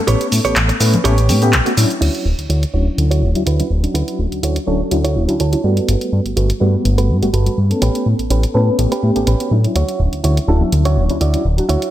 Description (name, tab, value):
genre	filtered disco house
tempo	124 BPM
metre	4/4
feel	swing 53% on 16ths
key	D major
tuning	A4 = 444 Hz
part	bright reed electric piano	accompaniment	0.0-11.9 s	F#3 to B4	-20 LUFS	left 1 dB	fast tremolo, phaser, low-pass filter
part	direct-recorded clean electric guitar	riff	0.1-11.9 s	C#4 to A5	-23 LUFS	right 5 dB	low-pass filter
part	fat analog bass	bass	0.1-11.8 s	D1 to A2	-15 LUFS	equal	low-pass filter
part	punchy analog drum machine	drums	0.1-11.9 s	crash cymbal, handclaps, hi-hat, shaker	-22 LUFS	equal	none
part	tambourine and congas	percussion	0.1-2.0, 9.8-11.8 s	none	-26 LUFS	left 4 dB	none
room	light reverb, digital ambience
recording	none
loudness	-13 LUFS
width	side -13 dB against mid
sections	0.0-2.0 A section; 2.0-11.9 B section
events	filter sweep 0.0-2.0; clean electric guitar fill 5.2-5.9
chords	0.1 A9; 2.0 Dmaj9; 5.6 Gmaj9; 7.8 A9; 9.8 Dmaj9